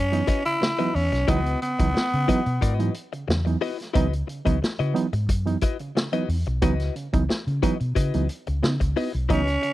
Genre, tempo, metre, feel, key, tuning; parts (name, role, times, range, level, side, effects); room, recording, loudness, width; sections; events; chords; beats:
funk; 90 BPM; 4/4; straight; C# minor; A4 = 445 Hz
growling tenor saxophone; melody; 0.0-2.9, 9.3-9.7 s; B3 to E4; -24 LUFS; equal; slapback echo
vintage muted fingered electric bass; bass; 0.0-9.6 s; B1 to C#3; -24 LUFS; equal
barky reed electric piano; stabs; 0.1-9.7 s; C#3 to D#4; -27 LUFS; right 4 dB; overdrive
vintage drum kit; drums; 0.1-9.7 s; hi-hat, kick drum, snare drum; -26 LUFS; equal
direct-recorded clean electric guitar; accompaniment; 0.3-9.7 s; E4 to D#5; -29 LUFS; left 8 dB
small room ambience; dry, close 1970s-style studio recording; -21 LUFS; side -15 dB against mid
0.0-9.7 A section
0.0 C#m11
0.61 | 1.28 1.95 2.62 3.29 | 3.96 4.62 5.29 5.96 | 6.63 7.30 7.96 8.63 | 9.30